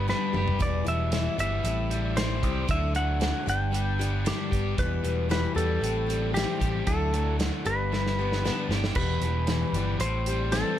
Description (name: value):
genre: folk rock and heartland rock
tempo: 115 BPM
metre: 4/4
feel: straight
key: E minor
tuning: A4 = 440 Hz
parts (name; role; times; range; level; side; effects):
- clean lap steel guitar; melody; 0.0-10.8 s; G4 to G5; -30 LUFS; equal; tape echo
- picked plugged-in old ladder-braced acoustic guitar; accompaniment; 0.0-10.8 s; E2 to G4; -33 LUFS; left 6 dB; none
- overdriven semi-hollow guitar; riff; 0.0-10.8 s; E2 to G4; -33 LUFS; equal; none
- picked electric bass; bass; 0.0-10.6 s; E1 to E2; -28 LUFS; right 1 dB; none
- natural country drum kit; drums; 0.1-10.7 s; crash cymbal, hi-hat, kick drum, snare drum, toms; -31 LUFS; right 1 dB; none
room: light reverb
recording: dark, warm production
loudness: -24 LUFS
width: side -11 dB against mid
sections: 0.0-9.0 A section; 9.0-10.8 A section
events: drum fill 0.1-0.6, 7.9-9.0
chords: 0.0 G; 0.6 Em; 1.6 Am7; 2.7 Dadd9; 3.5 G; 4.8 Em; 5.8 Am7; 6.9 Dadd9; 7.6 G; 9.0 Em; 10.0 Am7